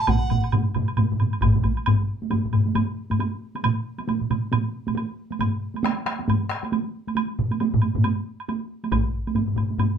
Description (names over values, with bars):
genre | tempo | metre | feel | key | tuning
japanese traditional, taiko drum ensemble | 136 BPM | 4/4 | swing 60% on 16ths | unclear | A4 = 440 Hz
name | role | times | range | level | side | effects
mellow hollow dizi | melody | 0.0-0.5 s | F#5 to A5 | -26 LUFS | right 4 dB | none
taiko ensemble | percussion | 0.0-9.9 s | none | -27 LUFS | right 5 dB | none
solo taiko drums | percussion | 0.1-1.8, 8.9-9.0 s | none | -26 LUFS | equal | none
taiko ensemble | percussion | 0.1-9.9 s | none | -24 LUFS | left 3 dB | none
taiko ensemble | percussion | 0.1-8.0 s | none | -25 LUFS | right 4 dB | none
woodblock | percussion | 0.1-9.9 s | none | -32 LUFS | right 2 dB | none
room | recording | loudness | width
wet small room reverb, RT60 0.6 s | band playing live in one room | -22 LUFS | side -8 dB against mid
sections
0.0-1.9 A section; 1.9-10.0 B section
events
none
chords
none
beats
| 0.08 0.52 0.97 1.42 | 1.86 2.31 2.75 3.20 | 3.64 4.08 4.53 4.97 | 5.41 5.85 6.29 6.73 | 7.17 7.61 8.05 8.48 | 8.92 9.36 9.79